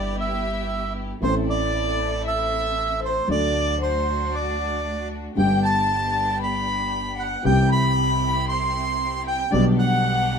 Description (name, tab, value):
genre	tango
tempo	116 BPM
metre	4/4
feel	rubato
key	G major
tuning	A4 = 440 Hz
part	bandoneon	melody	0.0-10.4 s	C5 to C6	-25 LUFS	right 4 dB	none
part	dark violin	second line	0.0-10.4 s	C5 to C6	-29 LUFS	left 8 dB	none
part	warm concert grand piano	accompaniment	0.0-10.4 s	G1 to A4	-26 LUFS	left 2 dB	none
part	rich studio string section	stabs	0.0-10.4 s	A3 to A4	-33 LUFS	equal	none
part	upright bass	bass	0.0-10.4 s	G1 to D2	-27 LUFS	right 1 dB	none
room	moderate studio reverb, RT60 0.8 s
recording	minimal, uncompressed stereo recording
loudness	-20 LUFS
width	side -6 dB against mid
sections	0.0-10.4 A section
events	none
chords	0.0 Em/G; 1.2 Am; 3.3 D; 5.4 G; 7.5 C; 9.5 G/B